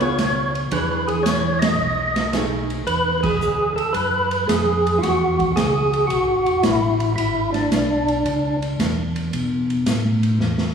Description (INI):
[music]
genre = soul jazz organ trio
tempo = 111 BPM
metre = 4/4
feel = swing 68% on 8ths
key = E mixolydian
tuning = A4 = 441 Hz
[part]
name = percussive tonewheel organ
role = melody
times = 0.0-8.6 s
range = D4 to D#5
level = -20 LUFS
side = equal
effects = slow rotary speaker, overdrive, chorus vibrato
[part]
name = archtop guitar, miked and amplified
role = accompaniment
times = 0.0-2.7 s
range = E3 to C#5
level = -26 LUFS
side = right 3 dB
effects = none
[part]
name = mellow tonewheel organ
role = bass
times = 0.0-10.7 s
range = E1 to B2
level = -24 LUFS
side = equal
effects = chorus vibrato, slow rotary speaker
[part]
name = open jazz drum kit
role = drums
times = 0.0-10.7 s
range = crash cymbal, hi-hat, kick drum, ride cymbal, snare drum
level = -25 LUFS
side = right 1 dB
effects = none
[sound]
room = wet concert hall reverb, RT60 2.3 s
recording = recorded in a church or concert hall, studio ambience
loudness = -18 LUFS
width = side -7 dB against mid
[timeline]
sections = 0.0-2.9 A section; 2.9-10.7 A section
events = band accent 1.5, 3.1; drum fill 10.4-10.7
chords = 0.0 C#7; 0.7 E6; 1.8 B6; 2.9 E13; 9.3 Asus2